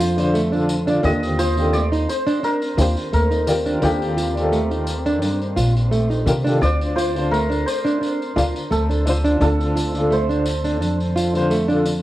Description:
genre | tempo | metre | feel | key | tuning
trip hop | 86 BPM | 4/4 | straight | D phrygian | A4 = 440 Hz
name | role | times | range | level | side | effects
santur | melody | 0.0-12.0 s | G4 to Eb5 | -26 LUFS | equal | cassette tape, tape echo
clear upright piano | accompaniment | 0.0-12.0 s | D3 to F5 | -22 LUFS | left 1 dB | tremolo
nylon-string guitar | arpeggios | 0.0-11.8 s | A3 to F4 | -23 LUFS | right 2 dB | vintage 12-bit sampler grit, tape echo
upright bass | bass | 0.0-12.0 s | Bb1 to C3 | -21 LUFS | equal | none
tambourine | percussion | 0.0-12.0 s | none | -34 LUFS | left 2 dB | none
wind-like tuned noise texture | texture | 0.0-12.0 s | C4 to C5 | -35 LUFS | left 2 dB | none
room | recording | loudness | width
light reverb | home recording on cassette, vinyl crackle | -17 LUFS | side -15 dB against mid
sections
0.0-12.0 A section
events
none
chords
0.0 Dm7; 1.0 Ebmaj9#11; 6.6 Dm7

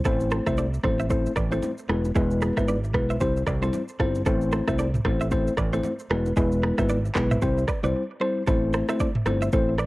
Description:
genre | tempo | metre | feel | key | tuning
afrobeats | 114 BPM | 4/4 | swing 58% on 16ths | A minor | A4 = 439 Hz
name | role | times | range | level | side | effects
bell-like tine electric piano | accompaniment | 0.0-9.7 s | G3 to C5 | -25 LUFS | left 2 dB | cassette tape
fingered electric bass | bass | 0.0-9.9 s | E1 to C2 | -27 LUFS | equal | none
afro-pop drum kit | drums | 0.0-9.9 s | handclaps, kick drum, rim click, shaker, toms | -27 LUFS | equal | cassette tape
direct-recorded clean electric guitar | riff | 0.1-9.9 s | E4 to E5 | -32 LUFS | right 4 dB | cassette tape, analog delay
congas and bongos | percussion | 0.1-9.4 s | none | -38 LUFS | right 4 dB | none
room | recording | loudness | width
digital ambience | home recording on cassette | -22 LUFS | side -20 dB against mid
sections
0.1-8.5 A section; 8.5-9.9 B section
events
break 7.9-8.5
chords
0.1 Am; 1.9 E; 3.2 C; 4.3 Am; 6.1 E; 7.4 C; 8.5 Am

